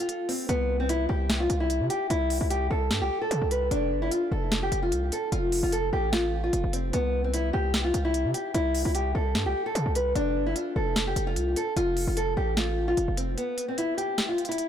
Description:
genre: hip hop, trap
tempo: 149 BPM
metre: 4/4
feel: half-time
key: C major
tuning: A4 = 440 Hz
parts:
  - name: nylon-string guitar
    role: melody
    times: 0.0-14.7 s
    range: B3 to B4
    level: -27 LUFS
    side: equal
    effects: digital delay
  - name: trap drum kit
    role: drums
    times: 0.1-14.7 s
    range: hi-hat, snare drum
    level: -31 LUFS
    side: equal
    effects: overdrive
  - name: hard-hitting 808-style bass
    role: bass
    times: 0.5-13.4 s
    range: F1 to C3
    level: -28 LUFS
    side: equal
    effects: none
room: little or no reverb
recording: blown-out, overdriven recording, overdrive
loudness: -24 LUFS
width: side -9 dB against mid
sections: 0.5-13.4 A section; 13.4-14.7 B section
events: break 0.0-0.5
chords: 0.5 C5; 3.7 F; 6.9 C5; 10.2 F; 13.4 N.C.

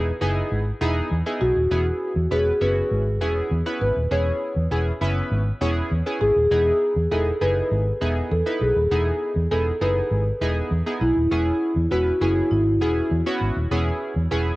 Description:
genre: dance-pop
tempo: 100 BPM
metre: 4/4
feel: straight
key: unclear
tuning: A4 = 440 Hz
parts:
  - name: marimba with soft mallets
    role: melody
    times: 0.0-14.6 s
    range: E4 to C#5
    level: -23 LUFS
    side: equal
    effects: cassette tape, tape echo
  - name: chorused retro synth keys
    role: accompaniment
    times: 0.0-14.5 s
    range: B3 to B4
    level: -27 LUFS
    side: right 1 dB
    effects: cassette tape
  - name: vintage muted fingered electric bass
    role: bass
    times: 0.0-14.5 s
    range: D#1 to E2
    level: -23 LUFS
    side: equal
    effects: none
room: moderate spring reverb, RT60 2.0 s, studio ambience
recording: home recording on cassette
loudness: -20 LUFS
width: side -19 dB against mid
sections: 0.0-14.6 A section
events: none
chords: 0.0 Emaj7; 1.7 C#m7; 6.5 Emaj7; 11.3 C#m7

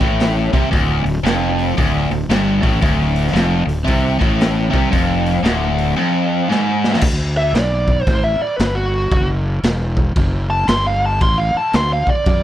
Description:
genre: blues rock power trio and southern rock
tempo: 114 BPM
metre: 4/4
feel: swing 63% on 8ths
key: unclear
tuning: A4 = 439 Hz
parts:
  - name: biting overdriven guitar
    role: riff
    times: 0.0-7.0 s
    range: D2 to C3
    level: -17 LUFS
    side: equal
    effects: none
  - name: fuzz fingered electric bass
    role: bass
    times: 0.0-12.4 s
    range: D1 to F#2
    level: -20 LUFS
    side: equal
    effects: overdrive
  - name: raw garage drum kit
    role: drums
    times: 0.0-12.4 s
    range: crash cymbal, hi-hat, kick drum, snare drum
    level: -19 LUFS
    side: equal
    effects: none
  - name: bluesy overdriven lead guitar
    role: melody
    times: 7.4-12.4 s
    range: F#4 to C6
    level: -18 LUFS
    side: equal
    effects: distortion
room: little or no reverb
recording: none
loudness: -14 LUFS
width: side -12 dB against mid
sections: 0.0-7.0 A section; 7.0-12.4 B section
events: drum fill 6.5-7.0; lead electric guitar solo 7.0-12.4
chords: 0.0 D5; 7.0 D

